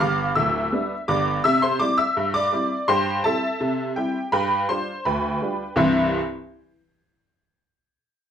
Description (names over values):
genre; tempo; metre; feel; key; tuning
ragtime piano; 83 BPM; 2/4; straight; C major; A4 = 442 Hz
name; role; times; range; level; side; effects
honky-tonk upright piano; solo; 0.0-6.2 s; D1 to F6; -20 LUFS; equal; none
room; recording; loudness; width
wet studio reverb, RT60 0.5 s; heard from further back in the room; -20 LUFS; side -8 dB against mid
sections
0.0-5.8 A section; 5.8-7.2 B section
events
none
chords
0.0 G7; 1.4 C; 2.9 C/G; 4.3 G7; 5.8 C